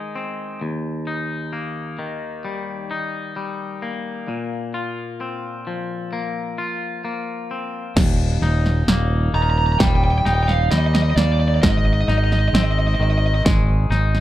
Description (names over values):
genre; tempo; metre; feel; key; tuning
post-rock; 65 BPM; 4/4; straight; Eb major; A4 = 441 Hz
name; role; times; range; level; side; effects
twangy electric guitar; arpeggios; 0.0-14.2 s; Eb2 to F4; -25 LUFS; left 3 dB; slapback echo
growling fingered electric bass; bass; 8.0-14.2 s; Eb1 to Eb2; -18 LUFS; equal; overdrive
big-room dance drum kit; drums; 8.0-14.2 s; crash cymbal, kick drum, snare drum; -19 LUFS; equal; overdrive
overdriven semi-hollow guitar; melody; 9.3-13.4 s; D5 to Bb5; -22 LUFS; right 2 dB; slapback echo
room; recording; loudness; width
digital ambience; dark, warm production; -18 LUFS; side -14 dB against mid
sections
0.0-8.0 A section; 8.0-14.2 B section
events
none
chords
0.0 Ab; 0.6 Eb; 4.3 Bbsus2; 8.0 Eb; 11.6 Ab